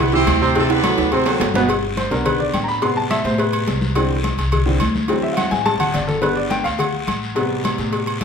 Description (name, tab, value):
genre	latin, salsa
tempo	212 BPM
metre	4/4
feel	straight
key	G major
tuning	A4 = 440 Hz
part	brilliant horn section	melody	0.0-1.5 s	A3 to C5	-21 LUFS	right 1 dB	none
part	warm upright piano	accompaniment	0.0-8.2 s	B2 to C6	-20 LUFS	right 1 dB	none
part	upright bass	bass	0.0-8.2 s	G1 to A2	-24 LUFS	left 1 dB	none
part	congas	percussion	0.1-8.2 s	none	-27 LUFS	left 3 dB	none
part	cowbell	percussion	0.3-8.2 s	none	-25 LUFS	left 6 dB	none
part	guiro	percussion	0.3-8.2 s	none	-31 LUFS	left 3 dB	none
part	timbales and agogo bells	percussion	0.3-8.2 s	none	-25 LUFS	right 4 dB	none
room	moderate large studio reverb, RT60 1.2 s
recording	minimal, uncompressed stereo recording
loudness	-16 LUFS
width	side -6 dB against mid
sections	0.0-1.7 A section; 1.7-8.2 B section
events	drum fill 0.6-1.7, 5.4-6.2; upright piano solo 1.7-8.2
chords	0.0 Cadd9; 0.6 D7; 1.7 G; 2.8 Am7; 4.0 Cadd9; 5.1 D7; 6.2 G; 7.4 Am7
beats	0.27 | 0.55 0.84 1.12 1.40 | 1.69 1.97 2.25 2.54 | 2.82 3.10 3.39 3.67 | 3.96 4.24 4.52 4.81 | 5.09 5.37 5.66 5.94 | 6.22 6.51 6.79 7.08 | 7.36 7.64 7.93 8.21